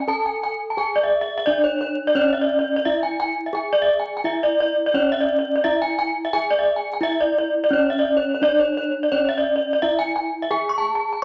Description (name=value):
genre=gamelan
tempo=86 BPM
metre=4/4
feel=straight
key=C# pelog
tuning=A4 = 439 Hz
part: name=gamelan-type bronze metallophone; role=melody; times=0.0-11.2 s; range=C#4 to A4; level=-28 LUFS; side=equal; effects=none
part: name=gamelan-type bronze metallophone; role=arpeggios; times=0.0-11.2 s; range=C#5 to C#6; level=-22 LUFS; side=equal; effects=none
room=wet studio reverb, RT60 0.8 s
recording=vinyl crackle, nothing above 7.9 kHz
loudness=-21 LUFS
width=mono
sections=0.0-11.2 A section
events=none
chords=none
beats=0.08 | 0.78 1.47 2.17 2.86 | 3.56 4.25 4.95 5.65 | 6.34 7.04 7.73 8.43 | 9.12 9.82 10.52 11.21